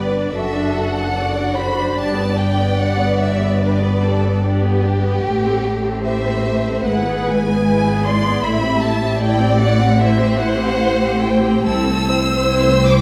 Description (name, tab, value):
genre	classical, slow romantic movement for string orchestra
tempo	74 BPM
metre	4/4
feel	uneven beats, rubato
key	unclear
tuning	A4 = 439 Hz
part	rich chamber violin section	melody	0.0-13.0 s	D5 to E6	-26 LUFS	equal	none
part	rich chamber violin section	second line	0.0-13.0 s	G4 to E5	-24 LUFS	equal	none
part	rich chamber viola section	accompaniment	0.0-13.0 s	G#3 to D5	-24 LUFS	equal	none
part	rich chamber cello section	bass	0.0-13.0 s	C2 to A2	-23 LUFS	equal	none
part	rich chamber double bass section	bass	0.0-13.0 s	F#1 to C2	-24 LUFS	equal	none
room	wet recital hall reverb, RT60 1.3 s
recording	heard from further back in the room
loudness	-17 LUFS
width	mono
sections	0.0-13.0 A section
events	none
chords	0.3 D/F#; 2.0 G; 5.2 Am7; 6.9 E/G#; 8.4 Am7; 11.7 Am/C